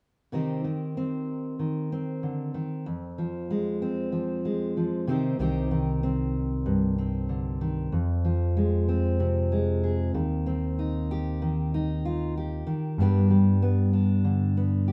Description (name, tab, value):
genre	folk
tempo	95 BPM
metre	4/4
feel	straight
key	C minor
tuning	A4 = 438 Hz
part	fingerpicked steel-string acoustic guitar	accompaniment	0.3-14.9 s	F2 to Ab4	-29 LUFS	equal	none
part	picked electric bass	bass	5.4-14.9 s	C2 to G2	-28 LUFS	equal	none
room	moderate stone room reverb, RT60 1.1 s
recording	band playing live in one room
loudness	-27 LUFS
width	mono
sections	0.3-5.4 A section; 5.4-14.9 B section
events	none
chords	0.3 Cm; 2.9 Fm; 5.1 Cm; 7.9 Fm; 10.1 Cm/Eb; 13.0 G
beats	| 0.32 0.96 1.60 2.23 | 2.87 3.50 4.13 4.77 | 5.40 6.04 6.67 7.30 | 7.93 8.56 9.20 9.83 | 10.46 11.09 11.72 12.35 | 12.98 13.61 14.24 14.87